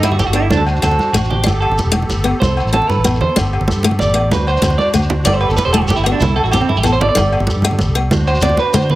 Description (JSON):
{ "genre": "highlife guitar band", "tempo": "126 BPM (dotted quarters)", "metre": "12/8", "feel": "straight", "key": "G major", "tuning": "A4 = 440 Hz", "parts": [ { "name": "picked steel-string acoustic guitar", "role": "accompaniment", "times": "0.0-9.0 s", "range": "A3 to D4", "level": "-20 LUFS", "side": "left 4 dB", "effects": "none" }, { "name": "musette accordion", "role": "sustained chords", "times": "0.0-9.0 s", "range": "A3 to C5", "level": "-26 LUFS", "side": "right 2 dB", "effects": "none" }, { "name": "clean electric guitar", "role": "arpeggios", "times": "0.0-9.0 s", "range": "C4 to D5", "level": "-18 LUFS", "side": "right 2 dB", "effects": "spring reverb, slapback echo" }, { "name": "fingered electric bass", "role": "bass", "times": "0.0-9.0 s", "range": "E1 to D3", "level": "-17 LUFS", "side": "equal", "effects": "none" }, { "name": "agogo bells", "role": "percussion", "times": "0.0-8.9 s", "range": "none", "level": "-25 LUFS", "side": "left 3 dB", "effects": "none" }, { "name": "congas", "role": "percussion", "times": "0.0-9.0 s", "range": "none", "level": "-20 LUFS", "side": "right 2 dB", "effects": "none" }, { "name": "shekere", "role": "percussion", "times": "0.0-8.9 s", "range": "none", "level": "-24 LUFS", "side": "left 1 dB", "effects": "none" } ], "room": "light reverb", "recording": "none", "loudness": "-12 LUFS", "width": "side -16 dB against mid", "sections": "0.0-9.0 A section", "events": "clean electric guitar solo 0.0-9.0", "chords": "0.0 Gadd9; 0.5 D7; 1.5 Gadd9; 2.4 C6; 3.4 Gadd9; 4.3 D7; 5.3 Gadd9; 6.2 C6; 7.2 Gadd9; 8.1 D7" }